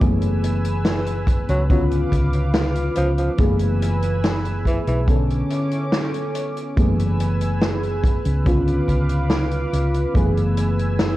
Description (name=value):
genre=vaporwave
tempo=71 BPM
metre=4/4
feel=straight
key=F# minor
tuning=A4 = 440 Hz
part: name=mellow FM electric piano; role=accompaniment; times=0.0-11.2 s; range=D3 to A4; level=-24 LUFS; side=equal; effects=wide subtle chorus, tape echo
part: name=lush unison pad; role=sustained chords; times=0.0-11.2 s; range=C#4 to E6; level=-29 LUFS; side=equal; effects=chorus
part: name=hollow-body short-scale fingered electric bass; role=bass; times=0.0-11.2 s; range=F#1 to C#2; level=-21 LUFS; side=equal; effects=tube saturation
part: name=kick drum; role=drums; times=0.0-10.3 s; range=none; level=-21 LUFS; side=equal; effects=none
part: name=swinging big-band drum kit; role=drums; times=0.0-11.2 s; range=hi-hat, snare drum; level=-25 LUFS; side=equal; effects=none
part: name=breathy tenor saxophone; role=melody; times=1.5-5.0 s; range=E3 to F#3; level=-29 LUFS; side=equal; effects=vintage 12-bit sampler grit, tape echo
room=light reverb, small room reverb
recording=worn, warbling old tape, cassette tape, warbly pitch drift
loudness=-18 LUFS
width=side -16 dB against mid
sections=0.0-11.2 A section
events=none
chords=0.0 F#m11; 1.7 C#7b9; 3.4 F#m11; 5.1 Bm9; 6.8 F#m11; 8.5 C#7b9; 10.2 F#m11